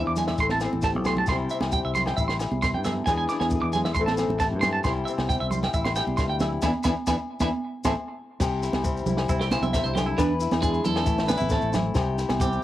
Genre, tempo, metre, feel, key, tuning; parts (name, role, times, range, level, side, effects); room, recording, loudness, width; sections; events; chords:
highlife guitar band; 135 BPM; 4/4; straight; C major; A4 = 439 Hz
fingerpicked old ladder-braced acoustic guitar; accompaniment; 0.0-12.6 s; G2 to B4; -29 LUFS; left 5 dB; plate reverb
fingered electric bass; bass; 0.0-12.6 s; A1 to G2; -29 LUFS; equal
clean electric guitar; arpeggios; 0.1-12.6 s; D4 to D6; -28 LUFS; right 3 dB; plate reverb
compact cocktail drum kit; drums; 0.2-12.5 s; crash cymbal, kick drum, snare drum; -30 LUFS; equal; cassette tape
congas; percussion; 0.2-12.4 s; -30 LUFS; right 3 dB
shekere; percussion; 0.2-12.6 s; -38 LUFS; left 2 dB
agogo bells; percussion; 0.3-12.4 s; -35 LUFS; left 4 dB
light reverb; home recording on cassette; -22 LUFS; side -14 dB against mid
0.0-8.4 A section; 8.4-12.6 B section
drum fill 0.9-1.3; band accent 6.6-8.4; clean electric guitar solo 8.4-12.6
0.4 Am; 1.3 C; 3.1 E7; 4.0 Am; 4.9 C; 6.6 E7; 7.5 Am; 8.4 C; 10.2 E7; 11.1 Am; 12.0 C